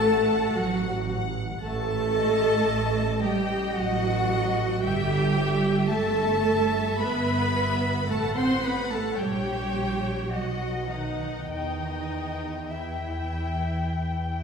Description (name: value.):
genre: classical, slow romantic movement for string orchestra.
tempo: 49-59 BPM.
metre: 3/4.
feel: rubato.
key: E minor.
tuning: A4 = 439 Hz.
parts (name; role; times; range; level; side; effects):
warm symphonic violin section; melody; 0.0-14.4 s; C#5 to G5; -35 LUFS; left 6 dB; none.
warm chamber violin section; second line; 0.0-14.4 s; D#5 to C6; -32 LUFS; left 3 dB; none.
rich chamber viola section; accompaniment; 0.0-14.4 s; D#4 to C5; -28 LUFS; right 1 dB; none.
warm chamber double bass section; bass; 0.0-14.4 s; G1 to E2; -30 LUFS; right 2 dB; none.
warm studio cello section; bass; 0.0-14.4 s; D#3 to C4; -30 LUFS; right 2 dB; none.
room: wet scoring stage reverb, RT60 1.7 s.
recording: minimal, uncompressed stereo recording.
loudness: -23 LUFS.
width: side -6 dB against mid.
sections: 0.0-14.4 A section.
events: none.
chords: 0.0 F#m/A; 1.6 D#dim/A; 4.8 Em/G; 8.1 F#dim/A; 9.2 A#m6; 10.3 B; 11.5 Em.